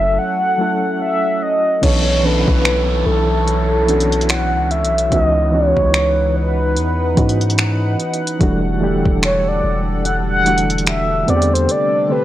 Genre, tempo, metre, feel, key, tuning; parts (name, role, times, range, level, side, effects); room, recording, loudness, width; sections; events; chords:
contemporary R&B; 73 BPM; 4/4; swing 58% on 16ths; A4 = 441 Hz
mellow horn-like synth lead; melody; 0.0-12.2 s; A4 to F#5; -17 LUFS; equal; chorus
soft electric-piano-like synth keys; accompaniment; 0.0-12.2 s; D3 to A4; -21 LUFS; right 1 dB; chorus, tremolo
chorused pulse-width pad; sustained chords; 0.0-12.2 s; C3 to F#5; -24 LUFS; equal
long sustained 808-style bass; bass; 0.0-11.7 s; E1 to G#2; -19 LUFS; equal
smooth R&B drum kit; drums; 1.8-11.9 s; crash cymbal, finger snaps, hi-hat, kick drum; -19 LUFS; equal
downlifter; sound effects; 1.8-8.4 s; -29 LUFS; left 1 dB
digital ambience; dry, gritty hardware recording, transformer saturation; -14 LUFS; side -13 dB against mid
0.0-1.8 A section; 1.8-12.2 B section
break 0.2-1.8; kick muted 11.7-12.2
0.0 F#m7; 1.8 Bm11; 5.1 C#m11; 8.4 Em11; 11.3 Am11